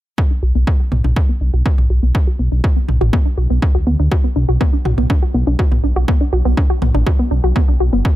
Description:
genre	melodic techno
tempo	122 BPM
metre	4/4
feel	straight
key	B minor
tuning	A4 = 440 Hz
part	wide unison pluck	arpeggios	0.2-8.1 s	B3 to F#4	-21 LUFS	equal	sidechain pumping, digital delay
part	electronic kick drum	drums	0.2-8.2 s	none	-15 LUFS	equal	studio reverb
part	swelling detuned saw bass	bass	0.4-8.0 s	F#1 to D2	-15 LUFS	equal	sidechain pumping
part	electronic toms	drums	0.9-7.0 s	none	-23 LUFS	right 1 dB	sidechain pumping on toms, studio reverb
room	digital ambience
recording	none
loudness	-13 LUFS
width	side -15 dB against mid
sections	0.2-8.2 A section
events	filter sweep on synth pluck 0.2-8.2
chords	0.2 Bm

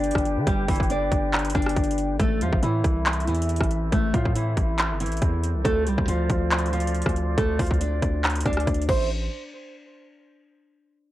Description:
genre	hip hop, trap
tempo	139 BPM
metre	4/4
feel	half-time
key	A minor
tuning	A4 = 440 Hz
part	nylon-string guitar	melody	0.0-9.1 s	E3 to D5	-27 LUFS	equal	low-pass filter, analog delay
part	mellow flute section	sustained chords	0.0-9.1 s	C4 to G5	-33 LUFS	left 1 dB	none
part	long sustained 808-style bass	bass	0.0-9.3 s	G1 to D3	-26 LUFS	equal	none
part	trap drum kit	drums	0.0-9.0 s	crash cymbal, handclaps, hi-hat, kick drum, rim click	-25 LUFS	equal	overdrive
room	little or no reverb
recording	dry, gritty hardware recording, cassette tape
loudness	-21 LUFS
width	side -15 dB against mid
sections	0.0-2.2 A section; 2.2-9.1 B section; 9.1-10.8 C section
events	none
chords	0.0 G; 2.2 Am; 5.7 Dm7; 8.9 Am; 9.1 N.C.

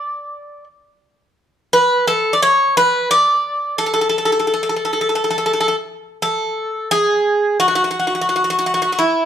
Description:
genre	greek folk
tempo	87 BPM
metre	4/4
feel	straight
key	A major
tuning	A4 = 438 Hz
part	Greek bouzouki	solo	0.0-9.3 s	E4 to D5	-15 LUFS	equal	none
room	moderate large studio reverb, RT60 1.1 s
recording	band playing live in one room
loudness	-14 LUFS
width	side -9 dB against mid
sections	0.0-6.6 A section; 6.6-9.3 B section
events	none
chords	none

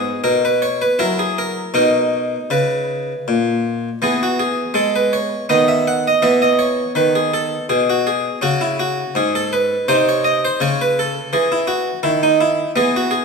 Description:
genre	classical, baroque-style suite movement for harpsichord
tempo	82 BPM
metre	3/4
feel	rubato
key	B major, E major from 4.0 s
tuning	A4 = 440 Hz
part	harpsichord	solo	0.0-13.2 s	G#2 to F#5	-15 LUFS	right 1 dB	none
room	wet recital hall reverb, RT60 1.4 s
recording	none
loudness	-15 LUFS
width	side -4 dB against mid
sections	0.0-4.0 A section; 4.0-13.2 A section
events	none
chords	0.0 G#madd9; 1.0 F#7; 1.8 B; 4.0 E; 5.5 B/D#; 6.2 E5; 8.4 C#5; 9.9 Cm; 10.6 C#m; 12.7 C#m7/E (rootless)

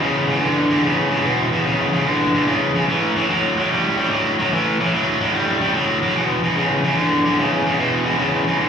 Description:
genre	blues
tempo	147 BPM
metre	4/4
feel	swing 67% on 8ths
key	unclear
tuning	A4 = 440 Hz
part	biting overdriven guitar	solo	0.0-8.7 s	E2 to G3	-16 LUFS	equal	slapback echo, tape echo
room	moderate club reverb, RT60 0.8 s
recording	live gig heard through the venue's PA, club reverb, studio ambience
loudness	-16 LUFS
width	side -7 dB against mid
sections	0.0-8.7 A section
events	none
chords	0.0 E5; 2.9 A5; 6.2 E5

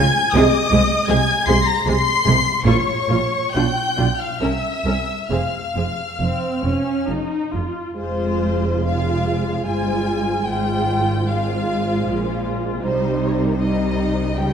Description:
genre	classical, slow romantic movement for string orchestra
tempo	64-82 BPM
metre	3/4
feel	rubato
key	F minor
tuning	A4 = 436 Hz
part	warm symphonic violin section	melody	0.0-14.5 s	C5 to C7	-25 LUFS	left 3 dB	none
part	warm symphonic violin section	second line	0.0-14.5 s	Bb4 to C6	-24 LUFS	left 2 dB	none
part	warm symphonic viola section	accompaniment	0.0-14.5 s	G3 to Bb4	-22 LUFS	equal	none
part	clear symphonic double bass section	bass	0.0-14.5 s	F1 to Db2	-24 LUFS	right 3 dB	none
part	rich symphonic cello section	bass	0.0-14.5 s	C2 to Db3	-24 LUFS	right 2 dB	none
room	wet scoring stage reverb, RT60 1.7 s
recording	none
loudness	-17 LUFS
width	side -7 dB against mid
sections	0.0-8.0 A section; 8.0-14.5 B section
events	none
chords	0.3 Ab/C; 2.7 Bbm; 3.5 G7/B; 4.4 C7b9; 5.3 F5; 8.0 Fm; 10.5 Fm/Ab; 12.8 Cm

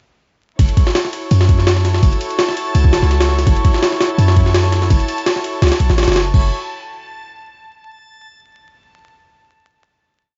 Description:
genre	drum and bass, jungle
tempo	167 BPM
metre	4/4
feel	swing 54% on 16ths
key	F# minor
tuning	A4 = 439 Hz
part	dark chamber string section	sustained chords	0.6-6.5 s	E4 to C#5	-26 LUFS	equal	none
part	warm 808-style bass	bass	0.6-6.5 s	F#1 to F#2	-16 LUFS	equal	none
part	jungle sampler-style drum kit	drums	0.6-6.4 s	crash cymbal, kick drum, ride cymbal, snare drum	-17 LUFS	equal	overdrive, small room ambience
part	backwards swelling texture	texture	0.6-6.3 s	A5	-33 LUFS	equal	built-in reverb
room	little or no reverb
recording	dry, gritty hardware recording, vinyl crackle, nothing above 7.6 kHz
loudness	-15 LUFS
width	mono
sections	0.6-6.3 drop; 6.3-7.8 final chord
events	drop 0.6-6.3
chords	0.6 F#m7

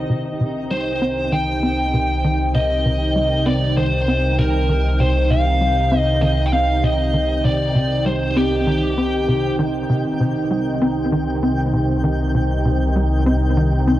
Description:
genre	ambient, sequencer-driven space music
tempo	98 BPM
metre	4/4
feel	straight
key	C minor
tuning	A4 = 440 Hz
part	sweeping resonant pad	sustained chords	0.0-14.0 s	C3 to G5	-22 LUFS	right 1 dB	chorus, cassette tape
part	fat analog bass	bass	0.0-14.0 s	C2	-21 LUFS	equal	none
part	twinkling granular texture	texture	0.0-14.0 s	Eb4 to G5	-33 LUFS	equal	built-in reverb, cassette tape
part	tight sequencer bass	riff	0.1-14.0 s	C3 to C4	-22 LUFS	equal	ensemble chorus, cassette tape, tape echo
part	biting lead guitar	melody	0.7-9.6 s	G4 to G5	-22 LUFS	equal	overdrive, cassette tape, tape echo
room	wet small room ambience, RT60 0.5 s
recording	home recording on cassette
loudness	-16 LUFS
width	side -14 dB against mid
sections	0.0-14.0 A section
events	filter sweep on analog synth bass 0.0-14.0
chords	0.0 Cm

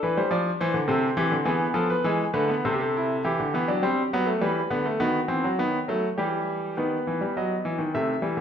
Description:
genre	classical, baroque-style 3-part fugue for grand piano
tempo	103 BPM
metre	3/4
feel	straight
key	unclear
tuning	A4 = 442 Hz
part	clear concert grand piano	solo	0.0-8.4 s	C3 to E5	-23 LUFS	equal	none
room	wet recital hall reverb, RT60 1.5 s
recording	minimal, uncompressed stereo recording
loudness	-23 LUFS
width	side -8 dB against mid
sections	0.0-6.8 A section; 6.8-8.4 B section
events	none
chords	0.0 Am (rootless); 0.9 Am/C; 1.5 E7; 2.7 Am/C; 3.2 Em; 5.0 B7/D#; 6.2 Em; 6.8 B/D#

